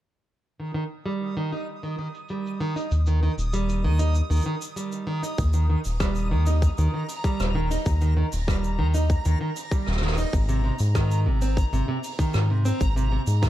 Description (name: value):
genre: folktronica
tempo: 97 BPM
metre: 4/4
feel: straight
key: Eb major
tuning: A4 = 440 Hz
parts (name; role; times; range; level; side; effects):
- jazz brush drum kit; drums; 0.4-13.5 s; hi-hat, rim click, shaker; -36 LUFS; right 1 dB; low-pass filter on hats, low-pass filter on snare, low-pass filter on perc, low-pass filter on room
- backwards swelling texture; texture; 0.7-13.5 s; Bb5 to Eb6; -37 LUFS; equal; built-in reverb
- nylon-string guitar; arpeggios; 0.6-13.5 s; C3 to Eb4; -28 LUFS; right 1 dB; low-pass filter, tape echo
- round analog bass; bass; 2.9-13.5 s; Eb1 to Ab2; -22 LUFS; equal; tube saturation
- electronic kick drum; drums; 5.4-13.5 s; none; -24 LUFS; equal; none
room: small room ambience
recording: dark, warm production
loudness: -22 LUFS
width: side -13 dB against mid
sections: 0.4-5.4 A section; 5.4-13.5 B section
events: break 4.8-5.4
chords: 0.4 Eb; 10.3 Ab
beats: | 0.44 1.06 1.68 2.29 | 2.91 3.53 4.15 4.77 | 5.39 6.01 6.62 7.24 | 7.86 8.48 9.10 9.72 | 10.34 10.96 11.57 12.19 | 12.81 13.43